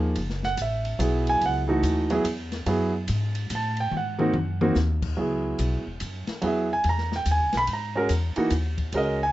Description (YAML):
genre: modal jazz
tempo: 144 BPM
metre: 3/4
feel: swing 65% on 8ths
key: C# dorian from 5.2 s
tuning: A4 = 440 Hz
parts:
  - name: warm grand piano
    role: accompaniment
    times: 0.0-9.3 s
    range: Fb3 to B5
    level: -24 LUFS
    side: right 2 dB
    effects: none
  - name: upright bass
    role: bass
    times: 0.0-9.3 s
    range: E1 to A2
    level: -27 LUFS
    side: left 1 dB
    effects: none
  - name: open jazz drum kit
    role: drums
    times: 0.2-9.1 s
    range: crash cymbal, hi-hat, kick drum, ride cymbal, snare drum, toms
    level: -34 LUFS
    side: left 2 dB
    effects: none
room: light reverb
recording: nothing above 7.9 kHz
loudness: -23 LUFS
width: side -15 dB against mid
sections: 0.0-5.2 A section; 5.2-9.3 A section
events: drum fill 3.9-4.8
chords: 0.2 Gbm11; 3.9 Ab7; 5.2 C#m9